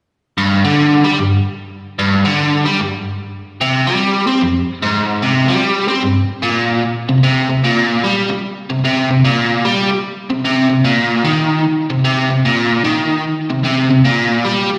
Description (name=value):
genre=rock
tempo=149 BPM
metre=4/4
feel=swing 64% on 8ths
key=unclear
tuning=A4 = 440 Hz
part: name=biting overdriven guitar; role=solo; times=0.4-14.7 s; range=F2 to C4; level=-15 LUFS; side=equal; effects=slapback echo
room=moderate lush hall reverb, RT60 2.8 s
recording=live gig heard through the venue's PA, recital hall reverb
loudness=-15 LUFS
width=mono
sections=0.4-6.8 A section; 6.8-14.8 B section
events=none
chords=none